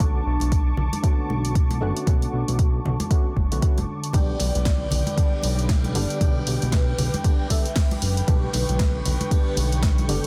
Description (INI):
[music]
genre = deep house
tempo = 116 BPM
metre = 4/4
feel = swing 59% on 16ths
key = unclear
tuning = A4 = 440 Hz
[part]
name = warm analog pad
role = sustained chords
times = 0.0-10.3 s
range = B4 to D6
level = -39 LUFS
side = equal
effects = chorus, sidechain pumping
[part]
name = percussive organ stab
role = stabs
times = 0.0-10.3 s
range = D3 to A4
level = -34 LUFS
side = equal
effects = ensemble chorus, sidechain pumping, digital delay
[part]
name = smooth synth bass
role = bass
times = 0.0-10.2 s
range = F#1 to B1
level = -27 LUFS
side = equal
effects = tube saturation, sidechain pumping
[part]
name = electronic kick drum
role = drums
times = 0.0-10.0 s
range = none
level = -23 LUFS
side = equal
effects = overdrive
[part]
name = punchy analog drum machine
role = drums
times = 0.0-10.3 s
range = hi-hat, snare drum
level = -33 LUFS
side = equal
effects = none
[part]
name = congas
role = percussion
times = 0.0-10.1 s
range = none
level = -35 LUFS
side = equal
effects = none
[part]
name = warbly tape-like pad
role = texture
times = 0.0-10.3 s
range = D3 to A5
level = -36 LUFS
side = equal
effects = none
[part]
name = vibraphone with soft mallets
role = melody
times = 4.1-10.3 s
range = A4 to E5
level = -35 LUFS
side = equal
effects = tape echo
[part]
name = vintage brush drum kit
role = drums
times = 4.1-10.2 s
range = hi-hat, ride cymbal, snare drum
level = -42 LUFS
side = equal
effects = sidechain pumping on cymbals, high-pass filter on cymbals, sidechain pumping on hats, high-pass filter on hats, high-pass filter on snare, high-pass filter on room
[sound]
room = little or no reverb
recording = dense, heavily limited modern master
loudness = -22 LUFS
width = mono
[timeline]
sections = 0.0-10.3 A section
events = none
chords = 0.0 Bm9; 4.1 G